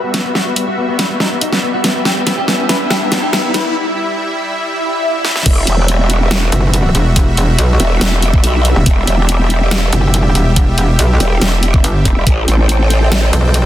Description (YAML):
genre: heavy wobble dubstep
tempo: 141 BPM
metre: 4/4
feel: half-time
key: E minor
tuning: A4 = 439 Hz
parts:
  - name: electric guitar at the edge of break-up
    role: melody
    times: 0.0-3.7 s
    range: B3 to B4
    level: -19 LUFS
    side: left 2 dB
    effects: low-pass filter, digital delay
  - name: supersaw pad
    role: sustained chords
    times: 0.0-13.7 s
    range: G3 to G5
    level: -20 LUFS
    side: right 1 dB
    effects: sidechain pumping, low-pass filter
  - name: riser and swell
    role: sound effects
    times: 0.8-5.5 s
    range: none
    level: -22 LUFS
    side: left 1 dB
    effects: none
  - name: dubstep drum kit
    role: drums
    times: 0.1-13.6 s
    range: crash cymbal, hi-hat, snare drum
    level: -17 LUFS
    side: equal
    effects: none
  - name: growl bass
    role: bass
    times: 5.5-13.3 s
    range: E1 to B1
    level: -12 LUFS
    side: equal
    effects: chorus, overdrive
  - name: electronic kick drum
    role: drums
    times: 5.5-12.4 s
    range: none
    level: -12 LUFS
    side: equal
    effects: none
  - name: metallic wobble bass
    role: bass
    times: 6.5-13.7 s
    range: E1 to B1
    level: -11 LUFS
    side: equal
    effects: chorus, overdrive
room: light reverb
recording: dense, heavily limited modern master, high-pass filter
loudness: -11 LUFS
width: side -12 dB against mid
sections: 0.0-5.5 A section; 5.5-13.7 B section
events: build-up 0.0-5.5; drum fill 0.0-3.8, 5.2; filter sweep on supersaw synth 0.0-5.5; riser 0.8-3.8; break 3.8-5.5; swell 4.7-5.5; drop 5.5-13.7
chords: 0.0 Emadd9; 12.3 Am7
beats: | 0.35 0.78 1.20 1.63 | 2.06 2.48 2.91 3.33 | 3.76 4.18 4.61 5.03 | 5.46 5.88 6.31 6.74 | 7.16 7.59 8.01 8.44 | 8.86 9.29 9.71 10.14 | 10.56 10.99 11.42 11.84 | 12.27 12.69 13.12 13.54